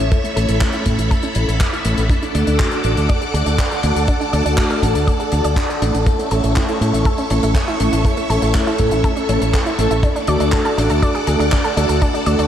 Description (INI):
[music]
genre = italo disco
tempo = 121 BPM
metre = 4/4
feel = straight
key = A major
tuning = A4 = 440 Hz
[part]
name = phased string machine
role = sustained chords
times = 0.0-12.5 s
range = A4 to E6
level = -22 LUFS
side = equal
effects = ensemble chorus, phaser
[part]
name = analog pluck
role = arpeggios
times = 0.0-12.5 s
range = A3 to D5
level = -24 LUFS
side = right 2 dB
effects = chorus, analog delay
[part]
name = mellow synth brass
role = stabs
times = 0.0-12.5 s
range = A3 to A4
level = -21 LUFS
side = equal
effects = chorus, cassette tape, analog delay
[part]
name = fingered electric bass with an envelope filter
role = bass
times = 0.0-12.5 s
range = A1 to A2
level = -20 LUFS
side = equal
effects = none
[part]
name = damped 70s drum kit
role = drums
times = 0.1-12.5 s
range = handclaps, hi-hat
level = -26 LUFS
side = equal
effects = studio reverb
[part]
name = kick drum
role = drums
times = 0.1-12.1 s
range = none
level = -18 LUFS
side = equal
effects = studio reverb
[sound]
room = moderate cathedral reverb, RT60 5.9 s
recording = dreamy mix soaked in reverb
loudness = -14 LUFS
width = side -10 dB against mid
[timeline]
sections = 0.0-12.5 A section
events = filter sweep on synth arpeggio sound 0.0-12.5; filter sweep on analog polysynth 0.0-12.5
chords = 0.0 A; 2.1 D; 6.1 A; 10.0 D